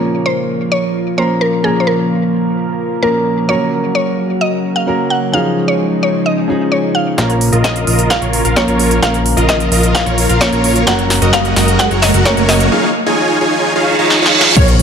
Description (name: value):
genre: EDM, festival progressive house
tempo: 130 BPM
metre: 4/4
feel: straight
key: Bb minor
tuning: A4 = 440 Hz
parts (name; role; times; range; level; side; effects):
- mallet-like synth pluck; melody; 0.0-12.7 s; Ab4 to Gb5; -18 LUFS; equal; chorus, dub echo
- warm grand piano; accompaniment; 0.0-12.7 s; Bb2 to Bb4; -18 LUFS; right 1 dB; sidechain pumping
- lush unison pad; sustained chords; 0.0-14.8 s; Bb2 to Bb4; -19 LUFS; left 1 dB; chorus, sidechain pumping
- big supersaw lead; riff; 7.2-14.7 s; Eb4 to Bb5; -15 LUFS; equal; cassette tape, sidechain pumping, low-pass filter, dub echo
- fat analog bass; bass; 7.2-14.8 s; Gb1 to Bb1; -16 LUFS; left 1 dB; sidechain pumping
- big-room dance drum kit; drums; 7.2-14.8 s; crash cymbal, hi-hat, snare drum; -18 LUFS; right 1 dB; overdrive, high-pass filter on snare, high-pass filter on hats, high-pass filter on cymbals, high-pass filter on room
- electronic kick drum; drums; 7.2-14.7 s; none; -17 LUFS; left 1 dB; overdrive, high-pass filter on kick, high-pass filter on room
- riser, reverse cymbal and impact; sound effects; 9.5-14.8 s; none; -18 LUFS; right 2 dB; none
- wide unison pluck; arpeggios; 14.6-14.7 s; Db5; -17 LUFS; right 2 dB; sidechain pumping
room: moderate lush hall reverb, RT60 1.9 s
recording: none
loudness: -11 LUFS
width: side -7 dB against mid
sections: 0.0-7.2 A section; 7.2-14.6 B section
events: filter sweep on analog synth pad 0.0-7.2; build-up 7.2-14.6; drum fill 7.2-12.7, 14.1-14.6; riser 9.5-12.7; reverse cymbal 13.8-14.6; impact 14.6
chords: 0.0 Bbm; 3.5 Gb; 5.3 Dbadd9; 7.2 Bbm; 10.9 Gb; 12.7 Dbadd9